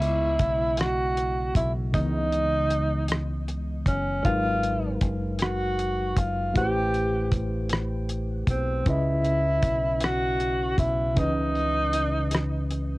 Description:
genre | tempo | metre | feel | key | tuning
slow six-eight R&B | 52 BPM (dotted quarters) | 6/8 | straight | C# minor | A4 = 441 Hz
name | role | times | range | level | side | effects
mellow tenor saxophone | melody | 0.0-12.7 s | C4 to G4 | -27 LUFS | equal | cassette tape
tine electric piano | accompaniment | 0.0-13.0 s | C#3 to D#5 | -30 LUFS | equal | overdrive, fast stereo tremolo, cassette tape
deep dub fingered electric bass | bass | 0.0-13.0 s | F#1 to C#2 | -29 LUFS | equal | none
damped 70s drum kit | drums | 0.0-12.9 s | hi-hat, kick drum, rim click | -26 LUFS | equal | cassette tape
room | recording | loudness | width
light reverb | home recording on cassette | -23 LUFS | side -20 dB against mid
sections
0.0-13.0 A section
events
none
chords
0.0 C#m9; 4.2 G#m9; 6.6 Am9; 8.9 C#m9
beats
0.79 | 1.94 3.09 | 4.25 5.40 | 6.55 7.71 | 8.86 10.02 | 11.17 12.32

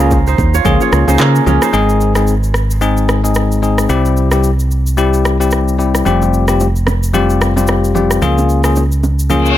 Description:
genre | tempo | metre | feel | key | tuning
afrobeats | 111 BPM | 4/4 | swing 58% on 16ths | Ab major | A4 = 441 Hz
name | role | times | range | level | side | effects
bell-like tine electric piano | accompaniment | 0.0-9.6 s | G3 to Ab4 | -15 LUFS | left 4 dB | none
kora | riff | 0.0-3.3 s | Bb3 to Db5 | -18 LUFS | right 10 dB | ping-pong delay
fingered electric bass | bass | 0.0-9.6 s | F1 to Db3 | -14 LUFS | equal | none
afro-pop drum kit | drums | 0.1-9.6 s | handclaps, kick drum, rim click, shaker | -20 LUFS | right 1 dB | none
bongos and congas | percussion | 0.1-1.6, 6.1-9.4 s | none | -22 LUFS | right 4 dB | none
reverse cymbal | sound effects | 9.4-9.6 s | none | -15 LUFS | left 4 dB | none
room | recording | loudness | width
little or no reverb | none | -10 LUFS | side -12 dB against mid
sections
0.0-1.7 A section; 1.7-9.6 B section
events
reverse cymbal 9.4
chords
0.0 Db6; 1.7 Ab; 3.9 C; 6.1 Fsus2; 8.2 Db6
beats
0.11 0.65 1.19 | 1.73 2.27 2.81 3.36 | 3.90 4.44 4.98 5.52 | 6.06 6.60 7.14 7.68 | 8.22 8.76 9.30

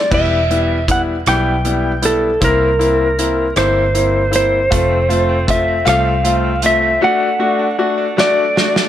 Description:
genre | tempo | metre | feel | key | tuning
six-eight pop ballad | 52 BPM (dotted quarters) | 6/8 | straight | unclear | A4 = 440 Hz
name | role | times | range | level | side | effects
clean lap steel guitar | melody | 0.0-8.9 s | A4 to G5 | -16 LUFS | equal | none
bright grand piano | accompaniment | 0.1-8.8 s | G3 to F#4 | -18 LUFS | left 4 dB | none
vintage muted fingered electric bass | bass | 0.1-7.0 s | E1 to C2 | -19 LUFS | right 1 dB | none
loose indie drum kit | drums | 0.1-8.9 s | crash cymbal, hi-hat, kick drum, rim click, snare drum | -20 LUFS | right 1 dB | none
direct-recorded clean electric guitar | arpeggios | 4.7-8.9 s | A3 to F#4 | -24 LUFS | right 8 dB | none
room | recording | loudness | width
light reverb, small room ambience | none | -12 LUFS | side -11 dB against mid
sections
0.1-8.9 A section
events
drum fill 8.2-8.9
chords
0.1 Em; 2.4 C7; 4.7 F; 7.0 D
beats
| 0.11 1.27 | 2.42 3.57 | 4.72 5.86 | 7.01 8.17

